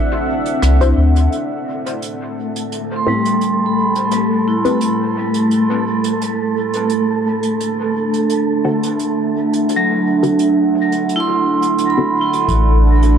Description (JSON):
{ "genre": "ambient dub", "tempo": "86 BPM", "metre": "4/4", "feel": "swing 54% on 16ths", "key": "A dorian", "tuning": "A4 = 442 Hz", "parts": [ { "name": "deep dark ambient pad", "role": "sustained chords", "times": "0.0-13.2 s", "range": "A3 to G5", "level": "-18 LUFS", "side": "equal", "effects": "chorus, built-in reverb" }, { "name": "vibraphone with hard mallets", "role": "arpeggios", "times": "0.0-13.2 s", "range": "F#3 to C6", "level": "-20 LUFS", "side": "right 2 dB", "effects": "low-pass filter, dub echo" }, { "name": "jazz brush drum kit", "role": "drums", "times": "0.5-13.2 s", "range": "hi-hat, rim click", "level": "-29 LUFS", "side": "right 4 dB", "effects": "none" }, { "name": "soft dub sub bass", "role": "bass", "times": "0.6-1.3, 12.5-13.2 s", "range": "A1 to D2", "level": "-11 LUFS", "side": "equal", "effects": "none" }, { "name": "filtered dub chord stab", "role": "stabs", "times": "0.8-12.1 s", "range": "A2 to C5", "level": "-25 LUFS", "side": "left 3 dB", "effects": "phaser, wide subtle chorus, dub echo" }, { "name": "wind-like tuned noise texture", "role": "texture", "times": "2.0-12.5 s", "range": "A3 to A4", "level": "-21 LUFS", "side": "right 3 dB", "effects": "built-in reverb" }, { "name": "electronic kick drum", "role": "drums", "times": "12.5-12.6 s", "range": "none", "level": "-22 LUFS", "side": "equal", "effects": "none" } ], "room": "moderate spring reverb, RT60 2.8 s", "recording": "echo-heavy mix", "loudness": "-14 LUFS", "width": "side -8 dB against mid", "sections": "0.0-1.3 A section; 1.3-12.5 B section", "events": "filter sweep on ambient pad 1.3-12.5; filter sweep on synth stab 1.3-12.5; filter sweep on vibraphone 1.3-12.5", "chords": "0.0 D9; 1.3 Am9; 6.9 D9; 12.5 Asus2", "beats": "0.62 | 1.32 2.02 2.72 3.42 | 4.11 4.81 5.51 6.21 | 6.90 7.60 8.30 9.00 | 9.70 10.39 11.09 11.79 | 12.49" }